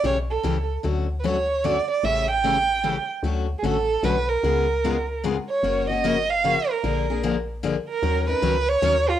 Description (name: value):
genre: acoustic string swing (jazz manouche)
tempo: 150 BPM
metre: 3/4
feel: swing 63% on 8ths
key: D major, F# major from 5.6 s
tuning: A4 = 440 Hz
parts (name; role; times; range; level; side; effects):
- warm violin; melody; 0.0-9.2 s; E#4 to G5; -22 LUFS; right 4 dB; none
- picked steel-string acoustic guitar; accompaniment; 0.0-8.9 s; C#3 to A#4; -26 LUFS; left 6 dB; cassette tape
- woody FM bass; bass; 0.0-9.2 s; F#1 to D#2; -27 LUFS; left 1 dB; none
room: wet studio reverb, RT60 0.5 s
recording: home recording on cassette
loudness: -20 LUFS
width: side -11 dB against mid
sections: 0.0-5.6 A section; 5.6-9.2 B section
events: none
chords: 0.0 A7; 0.8 Dmaj7; 2.0 A7; 3.2 Dmaj7; 4.4 C#7; 5.6 F#maj7; 6.8 A#7; 8.0 D#m7